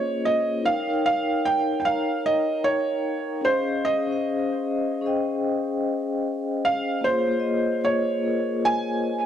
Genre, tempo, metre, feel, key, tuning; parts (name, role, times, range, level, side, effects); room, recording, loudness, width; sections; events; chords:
hip hop; 75 BPM; 4/4; swing 64% on 16ths; A4 = 441 Hz
felt-muted upright piano; melody; 0.0-9.3 s; C5 to Ab5; -24 LUFS; right 2 dB; plate reverb, analog delay
vibraphone with soft mallets; accompaniment; 0.0-9.3 s; Bb3 to Bb5; -25 LUFS; left 2 dB; plate reverb
moderate studio reverb, RT60 0.6 s; -22 LUFS; side -9 dB against mid
0.0-9.3 A section
0.0 Bbm9; 0.6 Eb7; 3.4 Dbmaj9; 7.0 Bbm9